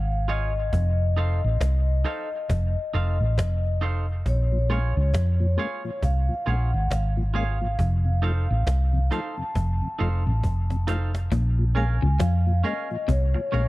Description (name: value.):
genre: roots reggae.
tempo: 68 BPM.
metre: 4/4.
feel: swing 60% on 16ths.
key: Bb minor.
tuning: A4 = 440 Hz.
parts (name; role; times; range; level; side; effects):
vibraphone with medium mallets; melody; 0.0-13.7 s; Db5 to A5; -32 LUFS; left 2 dB; dub echo.
hollow-body short-scale fingered electric bass; bass; 0.0-13.7 s; F1 to F2; -22 LUFS; equal; none.
cajon; drums; 0.1-13.7 s; none; -29 LUFS; equal; none.
semi-hollow electric guitar; accompaniment; 0.3-13.7 s; Db4 to F5; -34 LUFS; right 5 dB; dub echo.
mellow tonewheel organ; accompaniment; 4.5-13.6 s; F2 to Eb4; -33 LUFS; left 2 dB; chorus vibrato, slow rotary speaker.
clean electric guitar; riff; 11.3-13.7 s; Bb2 to F3; -30 LUFS; left 5 dB; none.
room: studio ambience.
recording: dark, warm production.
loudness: -22 LUFS.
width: side -18 dB against mid.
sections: 0.0-11.3 A section; 11.3-13.7 B section.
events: drum fill 9.6-11.3.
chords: 0.0 Bbm7 (rootless); 0.7 F7; 4.3 Bbm7; 7.8 F7; 11.3 Bbm7.